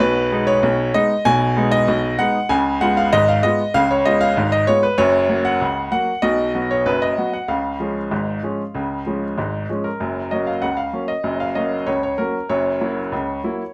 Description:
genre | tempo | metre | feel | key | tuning
ragtime piano | 96 BPM | 2/4 | straight | F# major | A4 = 440 Hz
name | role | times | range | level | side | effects
bright baby grand piano | solo | 0.0-13.7 s | F#1 to G#5 | -19 LUFS | equal | none
room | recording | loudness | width
moderate small room reverb, RT60 0.5 s | heard from further back in the room | -19 LUFS | mono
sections
0.0-10.0 A section; 10.0-13.7 B section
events
none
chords
0.0 G#m/B; 2.5 C#7; 5.0 F#; 6.2 B5; 7.5 C#; 10.0 F#; 12.5 F#7

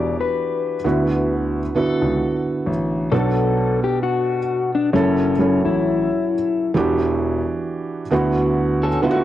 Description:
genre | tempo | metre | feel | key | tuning
lo-fi hip hop | 66 BPM | 4/4 | swing 58% on 16ths | E dorian | A4 = 441 Hz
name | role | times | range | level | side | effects
mellow electric guitar | melody | 0.0-6.7 s | C#4 to D5 | -22 LUFS | left 6 dB | cassette tape
felt-muted upright piano | accompaniment | 0.0-9.2 s | B2 to A4 | -20 LUFS | right 3 dB | cassette tape
dark baby grand piano | bass | 0.0-8.9 s | E1 to D2 | -24 LUFS | left 2 dB | none
electric guitar through a small old amp | second line | 8.8-9.2 s | A3 to A4 | -25 LUFS | left 1 dB | tremolo, cassette tape
room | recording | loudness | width
moderate small room reverb, RT60 0.5 s | home recording on cassette | -17 LUFS | side -13 dB against mid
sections
0.0-9.2 A section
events
none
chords
0.0 Em9; 0.8 D69; 3.1 Bm7; 4.9 F#m7; 6.7 Em9; 8.1 D69

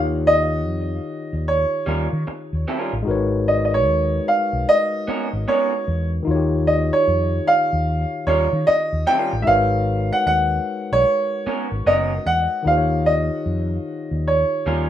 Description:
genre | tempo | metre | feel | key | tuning
R&B, neo-soul | 75 BPM | 4/4 | swing 64% on 16ths | G# dorian | A4 = 440 Hz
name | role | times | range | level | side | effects
overdriven tine electric piano | accompaniment | 0.0-14.9 s | D#3 to C#5 | -26 LUFS | left 4 dB | none
mellow fretless electric bass | bass | 0.0-14.9 s | F#1 to D#3 | -23 LUFS | equal | ensemble chorus
bright baby grand piano | melody | 0.3-14.9 s | C#5 to G5 | -19 LUFS | right 1 dB | none
electric guitar through a small old amp | second line | 1.9-14.9 s | G3 to A#4 | -25 LUFS | right 3 dB | none
room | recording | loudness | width
wet studio reverb, RT60 0.6 s | rough home demo mix | -18 LUFS | side -11 dB against mid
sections
0.0-14.9 A section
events
none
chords
0.0 D#9; 3.1 G#m11; 6.3 D#9; 9.5 G#m11; 12.7 D#9

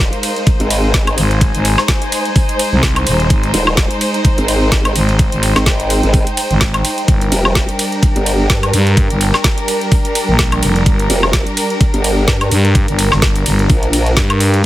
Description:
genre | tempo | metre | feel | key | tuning
bass house | 127 BPM | 4/4 | swing 56% on 16ths | G phrygian | A4 = 440 Hz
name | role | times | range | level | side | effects
warm chamber string section | sustained chords | 0.0-14.6 s | G3 to C5 | -21 LUFS | left 1 dB | sidechain pumping, low-pass filter
formant-sweep wobble bass | bass | 0.0-14.2 s | Eb1 to G2 | -15 LUFS | equal | chorus, overdrive, sidechain pumping
garage drum kit | drums | 0.0-14.6 s | hi-hat, ride cymbal, snare drum, woodblock | -18 LUFS | equal | none
warbly tape-like pad | texture | 0.0-14.7 s | D4 to Ab5 | -22 LUFS | right 1 dB | chorus, built-in reverb, sidechain pumping
electronic kick drum | drums | 0.5-14.3 s | none | -14 LUFS | equal | none
growling FM bass | bass | 1.2-14.6 s | Eb1 to G2 | -14 LUFS | equal | tube saturation, sidechain pumping
room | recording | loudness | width
little or no reverb | heavily compressed radio sound | -11 LUFS | side -15 dB against mid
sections
0.0-14.7 A section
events
none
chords
0.0 Ab; 7.1 Gm

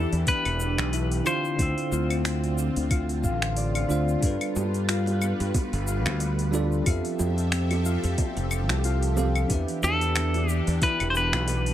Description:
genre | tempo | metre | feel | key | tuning
sunset chillout | 91 BPM | 4/4 | swing 56% on 16ths | unclear | A4 = 440 Hz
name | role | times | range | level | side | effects
semi-hollow electric guitar | melody | 0.0-2.5, 9.8-11.7 s | A4 to C5 | -28 LUFS | left 1 dB | ping-pong delay
bell-like tine electric piano | accompaniment | 0.0-11.7 s | D3 to E6 | -31 LUFS | right 1 dB | auto-pan, digital delay
lush unison pad | sustained chords | 0.0-11.7 s | D3 to E5 | -34 LUFS | equal | chorus, phaser
concert harp | arpeggios | 0.0-11.7 s | B3 to F5 | -34 LUFS | left 6 dB | digital delay
modern bright fingered electric bass | bass | 0.0-11.7 s | E1 to G2 | -26 LUFS | equal | none
smooth R&B drum kit | drums | 0.1-11.7 s | claves, finger snaps, hi-hat, shaker | -32 LUFS | left 1 dB | none
electronic kick drum | drums | 0.3-11.0 s | none | -25 LUFS | equal | none
bongos | percussion | 4.6-11.4 s | none | -37 LUFS | right 4 dB | none
room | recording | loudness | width
light reverb | none | -23 LUFS | side -12 dB against mid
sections
0.0-11.7 A section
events
none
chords
0.0 Em7; 1.3 Dm7; 4.2 G7; 6.9 Fmaj9; 9.5 Em7

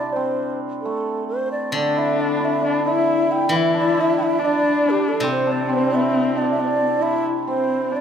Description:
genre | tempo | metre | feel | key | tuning
chinese traditional, Chinese chamber ensemble | 67 BPM | 2/4 | rubato | D shang mode | A4 = 440 Hz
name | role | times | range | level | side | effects
breathy xiao | melody | 0.0-8.0 s | G4 to G5 | -23 LUFS | right 2 dB | none
hammered dulcimer | second line | 0.0-8.0 s | G3 to E4 | -23 LUFS | right 2 dB | none
steel-string zither | accompaniment | 0.0-7.9 s | C3 to E3 | -28 LUFS | left 3 dB | none
warm horsehead fiddle | second line | 1.7-8.0 s | C4 to E4 | -22 LUFS | left 5 dB | none
room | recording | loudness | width
moderate recital hall reverb, RT60 1.5 s | recorded in a church or concert hall | -18 LUFS | side -8 dB against mid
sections
0.0-8.0 A section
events
none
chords
none

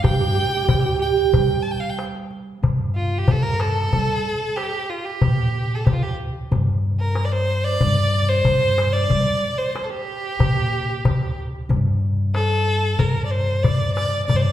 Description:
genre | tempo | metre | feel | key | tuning
Turkish makam ensemble | 93 BPM | 4/4 | straight | G makam ussak | A4 = 440 Hz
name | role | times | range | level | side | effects
rich violin | melody | 0.0-14.5 s | F4 to A5-27c | -23 LUFS | equal | none
oud | second line | 0.0-1.6 s | G4 | -22 LUFS | right 9 dB | none
upright bass | bass | 0.0-14.5 s | D2 to G3 | -23 LUFS | equal | none
darbuka | percussion | 0.0-14.5 s | none | -22 LUFS | left 2 dB | none
room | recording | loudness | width
wet recital hall reverb, RT60 1.7 s | heard from further back in the room | -18 LUFS | side -12 dB against mid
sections
0.0-2.6 A section; 2.6-13.0 B section; 13.0-14.5 C section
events
none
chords
none

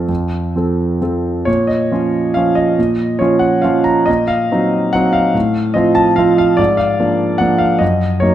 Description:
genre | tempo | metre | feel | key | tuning
classical, piano waltz | 128-154 BPM | 3/4 | rubato | Bb minor | A4 = 438 Hz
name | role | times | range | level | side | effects
clear concert grand piano | solo | 0.0-8.3 s | F2 to Bb5 | -12 LUFS | right 1 dB | none
room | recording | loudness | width
moderate recital hall reverb, RT60 1.6 s | minimal, uncompressed stereo recording | -12 LUFS | side -11 dB against mid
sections
0.0-8.3 A section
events
none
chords
0.0 F; 1.5 Bbm; 4.1 Cm7b5/Bb; 5.3 F/A; 6.6 Bb7/Ab; 7.8 Ebm/Gb

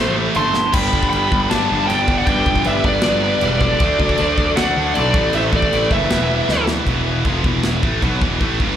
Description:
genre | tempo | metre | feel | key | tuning
heavy metal | 156 BPM | 4/4 | straight | E minor | A4 = 441 Hz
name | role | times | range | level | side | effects
high-gain lead guitar | melody | 0.0-6.6 s | C5 to C6 | -20 LUFS | equal | distortion, tape echo
high-gain lead guitar | second line | 0.0-6.7 s | A4 to A5 | -27 LUFS | right 4 dB | distortion, slapback echo, tape echo
heavy high-gain guitar | riff | 0.0-8.8 s | E2 to D4 | -26 LUFS | left 14 dB | distortion, slapback echo
heavy high-gain guitar | riff | 0.0-8.8 s | E2 to D4 | -24 LUFS | right 13 dB | distortion
high-gain distorted guitar | riff | 0.0-8.8 s | E2 to E4 | -24 LUFS | equal | distortion
fuzz picked electric bass | bass | 0.0-8.8 s | E1 to D2 | -22 LUFS | equal | overdrive
modern studio drum kit | drums | 0.3-8.7 s | china cymbal, crash cymbal, kick drum, snare drum | -22 LUFS | equal | none
room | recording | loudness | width
light reverb | live gig heard through the venue's PA, club reverb | -14 LUFS | side -10 dB against mid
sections
0.0-6.9 A section; 6.9-8.8 B section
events
drum fill 0.5, 6.5-6.9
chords
0.0 Am; 0.7 G; 3.8 D; 5.1 Am; 6.1 Em; 6.9 E5

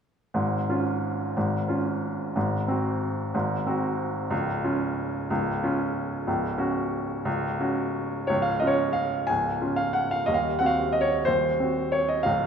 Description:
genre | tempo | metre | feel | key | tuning
classical, piano waltz | 181 BPM | 3/4 | uneven beats, rubato | Db major | A4 = 440 Hz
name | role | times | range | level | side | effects
clear baby grand piano | solo | 0.3-12.5 s | Db1 to Ab5 | -24 LUFS | equal | none
room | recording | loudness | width
wet scoring stage reverb, RT60 1.5 s | minimal, uncompressed stereo recording | -24 LUFS | side -7 dB against mid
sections
0.3-8.3 A section; 8.3-12.5 B section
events
none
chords
0.3 Db/Ab; 2.4 Ab7; 4.3 Db; 6.3 Gb5/Db; 8.3 Db; 10.3 Cdim/Eb

